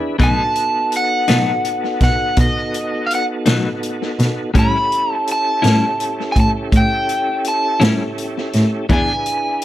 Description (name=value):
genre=slow blues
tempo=55 BPM (dotted quarters)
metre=12/8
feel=straight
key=unclear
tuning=A4 = 436 Hz
part: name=tonewheel organ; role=sustained chords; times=0.0-9.6 s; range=B3 to B4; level=-24 LUFS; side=right 1 dB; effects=slow rotary speaker, chorus vibrato
part: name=crunchy overdriven guitar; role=melody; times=0.2-9.6 s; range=D#5 to B5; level=-18 LUFS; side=equal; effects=none
part: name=clean electric guitar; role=accompaniment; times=0.2-9.1 s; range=A2 to G#4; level=-19 LUFS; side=left 4 dB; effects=harmonic tremolo
part: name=dark cello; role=bass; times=0.2-9.0 s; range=E2 to B2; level=-17 LUFS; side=equal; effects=none
part: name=vintage drum kit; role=drums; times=0.2-9.6 s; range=hi-hat, kick drum, snare drum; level=-20 LUFS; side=equal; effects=tape echo
room=studio ambience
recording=echo-heavy mix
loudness=-15 LUFS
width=side -13 dB against mid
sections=0.0-9.6 A section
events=none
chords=0.2 B7; 4.6 A7; 8.9 E7